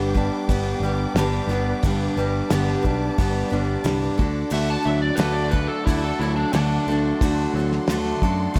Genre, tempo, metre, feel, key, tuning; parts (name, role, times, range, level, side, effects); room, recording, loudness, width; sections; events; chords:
folk rock and heartland rock; 89 BPM; 4/4; straight; G major; A4 = 440 Hz
picked steel-string acoustic guitar; accompaniment; 0.0-8.6 s; G2 to B4; -29 LUFS; equal
warm symphonic string section; sustained chords; 0.0-8.6 s; A4 to D6; -37 LUFS; equal
electric guitar through a small old amp; riff; 0.0-8.6 s; G2 to D4; -29 LUFS; equal
picked electric bass; bass; 0.0-8.6 s; G1 to F#2; -27 LUFS; equal
cloth-damped thuddy drum kit; drums; 0.2-8.6 s; hi-hat, kick drum, snare drum; -28 LUFS; equal
overdriven slide guitar; second line; 4.5-7.2 s; D4 to A5; -29 LUFS; equal
light reverb, small room ambience; -22 LUFS; mono
0.0-8.6 A section
0.0 G; 4.2 D